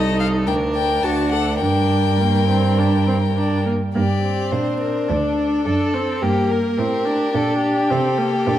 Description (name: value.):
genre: quick classical-period movement for string quartet.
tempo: 106 BPM.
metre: 4/4.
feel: straight.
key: G minor.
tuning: A4 = 440 Hz.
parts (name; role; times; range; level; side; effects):
clear violin; melody; 0.0-8.6 s; G4 to A5; -26 LUFS; left 7 dB; none.
rich violin; second line; 0.0-8.6 s; D4 to Bb4; -23 LUFS; left 2 dB; none.
warm viola; accompaniment; 0.0-8.6 s; Bb3 to Eb4; -22 LUFS; right 1 dB; none.
rich cello; bass; 0.0-8.6 s; C2 to C3; -21 LUFS; right 2 dB; none.
room: wet recital hall reverb, RT60 1.4 s.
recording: none.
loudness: -17 LUFS.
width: side -12 dB against mid.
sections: 0.0-4.0 A section; 4.0-8.6 B section.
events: none.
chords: 0.5 Gm/D; 1.6 Gm; 5.1 D7; 6.2 Gm.